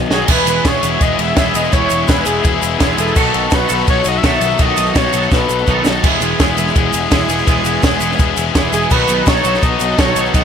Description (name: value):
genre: indie rock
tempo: 167 BPM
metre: 4/4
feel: straight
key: E major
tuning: A4 = 440 Hz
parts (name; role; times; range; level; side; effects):
- octave-doubled lead; melody; 0.0-5.9, 8.7-10.4 s; G#4 to E5; -19 LUFS; equal; chorus, tape echo
- crunchy overdriven guitar; riff; 0.0-10.4 s; B2 to A4; -19 LUFS; left 13 dB; none
- twangy electric guitar; riff; 0.0-10.4 s; B2 to A4; -20 LUFS; right 9 dB; analog chorus, tape echo
- fuzz picked electric bass; bass; 0.0-10.4 s; E1 to B1; -21 LUFS; equal; overdrive
- compact cocktail drum kit; drums; 0.1-10.4 s; crash cymbal, kick drum, ride cymbal, snare drum; -16 LUFS; equal; none
- clear trumpet; second line; 0.3-10.4 s; D#4 to G#4; -26 LUFS; left 3 dB; none
- bright tonewheel organ; sustained chords; 0.3-10.4 s; B4 to E6; -29 LUFS; equal; none
- tube shaker; percussion; 0.3-10.4 s; none; -29 LUFS; right 17 dB; none
room: little or no reverb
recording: none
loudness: -12 LUFS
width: side -7 dB against mid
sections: 0.3-10.4 A section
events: drum fill 0.0, 5.3-6.0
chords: 0.3 E; 3.2 B7; 6.0 E; 8.9 B7